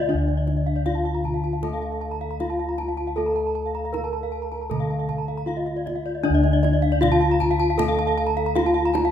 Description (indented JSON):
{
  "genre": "Balinese gamelan",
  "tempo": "78 BPM",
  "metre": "4/4",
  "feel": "straight",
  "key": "D pelog",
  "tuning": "A4 = 440 Hz",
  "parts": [
    { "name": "gamelan-type bronze metallophone", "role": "melody", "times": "0.0-9.1 s", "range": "D4 to Bb4", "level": "-25 LUFS", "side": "left 1 dB", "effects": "none" },
    { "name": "gamelan-type bronze metallophone", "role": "accompaniment", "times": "0.0-9.1 s", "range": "D3 to A3", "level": "-30 LUFS", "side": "left 3 dB", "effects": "none" },
    { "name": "gamelan-type bronze metallophone", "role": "arpeggios", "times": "0.0-9.1 s", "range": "D5 to Bb5", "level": "-30 LUFS", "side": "right 6 dB", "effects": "none" },
    { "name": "gamelan-type bossed gongs", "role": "bass", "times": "0.0-9.1 s", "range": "D2 to A4", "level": "-26 LUFS", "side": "left 1 dB", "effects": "none" },
    { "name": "gamelan-type bronze metallophone", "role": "arpeggios", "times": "0.1-9.0 s", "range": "D5 to Bb5", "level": "-29 LUFS", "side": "left 3 dB", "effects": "none" },
    { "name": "kendang", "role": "percussion", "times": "0.3-9.1 s", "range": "none", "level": "-33 LUFS", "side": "right 5 dB", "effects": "none" }
  ],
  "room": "moderate recital hall reverb, RT60 1.5 s",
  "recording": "minimal, uncompressed stereo recording",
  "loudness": "-21 LUFS",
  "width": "side -9 dB against mid",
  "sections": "0.0-9.1 A section",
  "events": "none",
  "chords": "none"
}